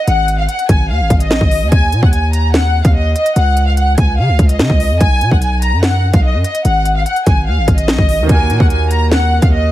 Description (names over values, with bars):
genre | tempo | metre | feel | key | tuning
hip hop, drill | 146 BPM | 4/4 | half-time | Eb minor | A4 = 443 Hz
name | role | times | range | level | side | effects
warm studio violin section | melody | 0.0-9.7 s | Eb5 to Bb5 | -17 LUFS | left 1 dB | none
hard-hitting 808-style bass | bass | 0.1-9.7 s | Ab1 to Db3 | -14 LUFS | equal | none
drill drum kit | drums | 0.1-9.5 s | hi-hat, kick drum, snare drum | -13 LUFS | equal | none
clear concert grand piano | accompaniment | 8.2-9.7 s | Eb3 to Bb4 | -20 LUFS | right 5 dB | none
room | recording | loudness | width
little or no reverb | heavily compressed radio sound, vinyl crackle | -10 LUFS | side -14 dB against mid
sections
0.0-9.7 A section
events
none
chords
0.1 Ab5; 1.7 Eb5; 3.4 Dbadd9; 5.0 B5; 6.6 Ab5; 8.3 Ebm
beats
| 0.07 0.48 0.90 1.31 | 1.72 2.13 2.54 2.95 | 3.36 3.77 4.18 4.59 | 5.01 5.42 5.83 6.24 | 6.65 7.06 7.47 7.88 | 8.29 8.70 9.12 9.53